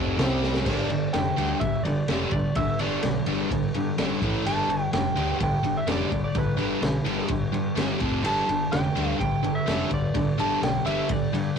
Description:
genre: garage rock duo or trio.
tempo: 127 BPM.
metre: 4/4.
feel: straight.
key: G mixolydian.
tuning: A4 = 439 Hz.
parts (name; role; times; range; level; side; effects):
biting overdriven guitar; riff; 0.0-11.6 s; F2 to C4; -25 LUFS; equal; none.
fuzz fingered electric bass; bass; 0.0-11.5 s; F1 to G2; -32 LUFS; equal; overdrive.
crunchy breakbeat drum kit; drums; 0.2-11.4 s; crash cymbal, kick drum, ride cymbal, snare drum; -29 LUFS; equal; none.
electric slide guitar; melody; 0.6-11.6 s; B4 to A5; -29 LUFS; right 2 dB; none.
room: wet booth ambience, RT60 0.2 s.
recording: rough rehearsal-room recording, warm saturation.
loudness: -22 LUFS.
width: side -6 dB against mid.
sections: 0.7-11.6 A section.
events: drum fill 0.4.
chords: 0.2 C5; 0.7 G5; 4.2 A5; 4.5 G; 8.0 F5; 8.2 G5.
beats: 0.18 | 0.66 1.13 1.61 2.08 | 2.56 3.03 3.50 3.98 | 4.45 4.93 5.40 5.88 | 6.35 6.83 7.30 7.77 | 8.25 8.72 9.20 9.67 | 10.14 10.62 11.09 11.57.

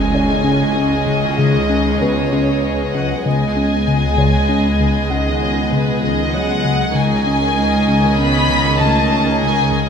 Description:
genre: cinematic, suspense film score.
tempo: 97 BPM.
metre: 3/4.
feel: straight.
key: unclear.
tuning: A4 = 441 Hz.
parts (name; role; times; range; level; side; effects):
dark studio violin section; melody; 0.0-9.7 s; B4 to B5; -21 LUFS; left 2 dB; none.
warm studio violin section; second line; 0.0-9.9 s; G#4 to D#5; -22 LUFS; left 2 dB; none.
dark studio viola section; accompaniment; 0.0-9.9 s; D#3 to C#4; -22 LUFS; right 1 dB; none.
warm studio cello section; bass; 0.0-9.7 s; B2 to B3; -23 LUFS; right 1 dB; none.
warm studio double bass section; bass; 0.0-9.9 s; C#2; -23 LUFS; right 3 dB; none.
swarming drone; drone; 0.0-9.9 s; C#2; -25 LUFS; left 1 dB; built-in reverb.
impact; sound effects; 0.0-1.4 s; none; -29 LUFS; equal; none.
smooth synth bass; riff; 0.1-9.9 s; C#3 to C#4; -20 LUFS; left 2 dB; none.
felt-muted upright piano; texture; 0.1-9.9 s; B3 to F#5; -29 LUFS; left 2 dB; none.
room: wet scoring stage reverb, RT60 1.6 s.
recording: none.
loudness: -14 LUFS.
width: side -7 dB against mid.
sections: 0.0-9.9 A section.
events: impact 0.0-1.4.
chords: 0.0 C#sus2.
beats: 0.13 0.76 | 1.38 2.01 2.63 | 3.25 3.87 4.49 | 5.11 5.73 6.34 | 6.96 7.57 8.18 | 8.79 9.41.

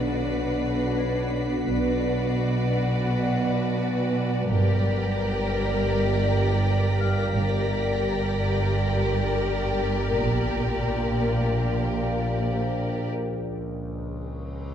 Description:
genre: cinematic, suspense film score.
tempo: free time.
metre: none.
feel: none.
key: unclear.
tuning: A4 = 440 Hz.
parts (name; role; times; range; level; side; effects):
rich symphonic violin section; melody; 0.0-13.1 s; D5; -34 LUFS; left 2 dB; none.
rich symphonic violin section; second line; 0.0-13.1 s; F#4 to B4; -29 LUFS; left 2 dB; none.
ethereal airy pad; sustained chords; 0.0-13.1 s; D4 to G5; -32 LUFS; left 1 dB; ensemble chorus, built-in reverb.
warm symphonic cello section; bass; 0.0-13.1 s; G2 to B2; -26 LUFS; right 2 dB; none.
overtone-sweeping drone; drone; 0.0-14.7 s; G1 to Db2; -30 LUFS; right 1 dB; chorus, built-in reverb.
warm symphonic violin section; texture; 0.0-9.8 s; Bb6 to C7; -41 LUFS; left 2 dB; none.
concert harp; texture; 1.0-10.9 s; B4 to B6; -37 LUFS; left 4 dB; none.
rich symphonic double bass section; bass; 1.7-10.9 s; G1 to B1; -27 LUFS; right 2 dB; none.
reverse cymbal; sound effects; 14.0-14.7 s; none; -57 LUFS; left 1 dB; none.
room: wet scoring stage reverb, RT60 1.9 s.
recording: dark, warm production.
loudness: -22 LUFS.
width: side -9 dB against mid.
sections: 0.0-14.7 A section.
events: break 13.1-14.7; reverse cymbal 14.0-14.7.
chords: 0.0 Bm; 4.5 Gm; 10.2 Bb6; 13.1 N.C..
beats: free time.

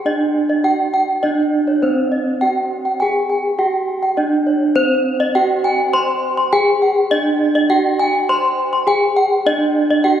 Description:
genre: gamelan.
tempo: 102 BPM.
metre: 4/4.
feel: straight.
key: C pelog.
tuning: A4 = 440 Hz.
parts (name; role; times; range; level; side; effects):
gamelan-type bronze metallophone; melody; 0.0-10.2 s; C4 to C5; -17 LUFS; right 1 dB; slapback echo.
gamelan-type bronze metallophone; arpeggios; 0.1-10.2 s; C5 to C6; -17 LUFS; left 1 dB; none.
room: wet concert hall reverb, RT60 2.5 s.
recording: recorded on a phone in the room, club reverb.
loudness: -14 LUFS.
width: side -10 dB against mid.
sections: 0.0-10.2 A section.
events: none.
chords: none.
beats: | 0.06 0.65 1.23 1.82 | 2.41 3.00 3.59 4.17 | 4.76 5.35 5.94 6.53 | 7.12 7.70 8.29 8.88 | 9.47 10.05.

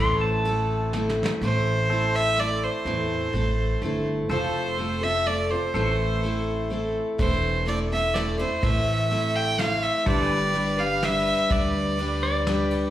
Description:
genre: honky-tonk and classic country.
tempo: 125 BPM.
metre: 3/4.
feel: straight.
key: A minor.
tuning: A4 = 440 Hz.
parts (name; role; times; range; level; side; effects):
pedal steel guitar; melody; 0.0-1.1, 12.2-12.9 s; D5 to C6; -27 LUFS; equal; slapback echo.
picked steel-string acoustic guitar; accompaniment; 0.0-12.9 s; A2 to B4; -27 LUFS; left 1 dB; slapback echo.
pedal steel guitar; sustained chords; 0.0-12.9 s; G4 to C5; -36 LUFS; equal; wide subtle chorus.
upright bass; bass; 0.0-12.7 s; E1 to E2; -28 LUFS; equal; none.
soft brush drum kit; drums; 0.5-1.4, 7.2-12.8 s; kick drum, ride cymbal, snare drum; -31 LUFS; equal; none.
clear fiddle; second line; 1.4-12.7 s; C5 to G5; -26 LUFS; right 2 dB; slapback echo.
room: light reverb, small room ambience.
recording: live gig heard through the venue's PA, club reverb.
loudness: -22 LUFS.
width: side -12 dB against mid.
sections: 0.0-1.4 A section; 1.4-12.9 B section.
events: pedal steel guitar solo 0.0-1.4; drum fill 0.9-1.4; fiddle solo 1.4-12.9.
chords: 0.0 Am; 4.3 F; 5.7 Am; 10.1 G.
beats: 0.46 0.94 | 1.42 1.90 2.38 | 2.86 3.34 3.82 | 4.30 4.78 5.26 | 5.75 6.23 6.71 | 7.19 7.67 8.15 | 8.63 9.11 9.59 | 10.07 10.55 11.03 | 11.51 11.99 12.47.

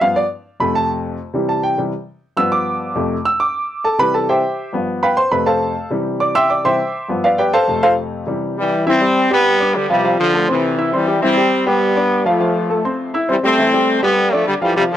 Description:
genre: latin.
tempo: 203 BPM.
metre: 4/4.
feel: straight.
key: C major.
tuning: A4 = 440 Hz.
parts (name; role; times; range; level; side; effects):
clear concert grand piano; accompaniment; 0.0-15.0 s; F2 to E6; -16 LUFS; equal; none.
brilliant trombone section; melody; 8.6-15.0 s; C3 to C4; -15 LUFS; left 1 dB; tape echo.
room: moderate studio reverb, RT60 0.6 s.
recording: dry, gritty hardware recording, transformer saturation.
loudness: -14 LUFS.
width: side -11 dB against mid.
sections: 0.0-8.9 A section; 8.9-15.0 B section.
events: grand piano solo 0.0-8.9.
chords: 0.0 G7; 0.6 F; 1.2 C; 2.4 G7; 3.0 F; 3.6 C; 4.7 G7; 5.3 F; 5.9 C; 7.1 G7; 7.7 F; 8.3 C; 9.5 G7; 10.0 F; 10.6 C; 11.8 G7; 12.4 F; 13.0 C; 14.2 G5.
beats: 0.01 0.30 | 0.60 0.90 1.19 1.49 | 1.78 2.08 2.37 2.67 | 2.96 3.26 3.55 3.85 | 4.14 4.44 4.73 5.03 | 5.32 5.62 5.91 6.21 | 6.50 6.80 7.09 7.39 | 7.68 7.98 8.27 8.57 | 8.86 9.16 9.45 9.75 | 10.04 10.34 10.63 10.93 | 11.22 11.52 11.81 12.11 | 12.40 12.70 12.99 13.29 | 13.58 13.88 14.17 14.47 | 14.76.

